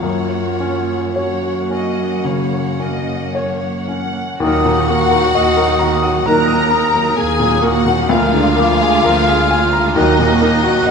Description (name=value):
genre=classical, romantic movement for piano and orchestra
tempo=52-67 BPM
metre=4/4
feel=rubato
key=F# major, Eb minor from 4.4 s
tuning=A4 = 440 Hz
part: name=clear baby grand piano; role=melody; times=0.0-10.9 s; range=D2 to Eb6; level=-19 LUFS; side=left 2 dB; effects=none
part: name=warm studio violin section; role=melody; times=0.0-10.9 s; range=Eb5 to Bb5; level=-20 LUFS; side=left 4 dB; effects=none
part: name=dark clarinet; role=second line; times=0.0-10.9 s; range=Eb4 to Bb4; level=-23 LUFS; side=right 1 dB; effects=none
part: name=warm studio violin section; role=second line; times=0.0-10.9 s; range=Eb4 to F#5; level=-24 LUFS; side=equal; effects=none
part: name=dark studio viola section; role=accompaniment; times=0.0-10.9 s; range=Eb3 to Gb4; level=-24 LUFS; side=right 3 dB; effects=none
part: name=mellow French horn section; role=sustained chords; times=0.0-10.3 s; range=A#3 to Gb4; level=-25 LUFS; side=left 2 dB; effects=none
part: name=rich studio cello section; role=bass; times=0.0-10.9 s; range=D2 to F#2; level=-23 LUFS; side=right 5 dB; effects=none
part: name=bright silver concert flute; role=second line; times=4.4-10.9 s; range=Db6 to Gb6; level=-22 LUFS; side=left 1 dB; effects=none
part: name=dark trombone section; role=sustained chords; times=4.4-10.3 s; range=Bb2 to Ab3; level=-26 LUFS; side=right 4 dB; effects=none
part: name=dark trumpet section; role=stabs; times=4.4-10.3 s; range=Bb4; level=-24 LUFS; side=right 2 dB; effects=none
part: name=clear studio double bass section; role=bass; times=4.4-10.9 s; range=D2 to Eb2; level=-23 LUFS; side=right 4 dB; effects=none
room=moderate scoring stage reverb, RT60 1.5 s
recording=nothing above 10.4 kHz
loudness=-13 LUFS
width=side -5 dB against mid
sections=0.0-4.4 A section; 4.4-10.9 B section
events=none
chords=0.0 F#; 4.4 Ebm; 8.1 Bb7/D; 10.0 Ebm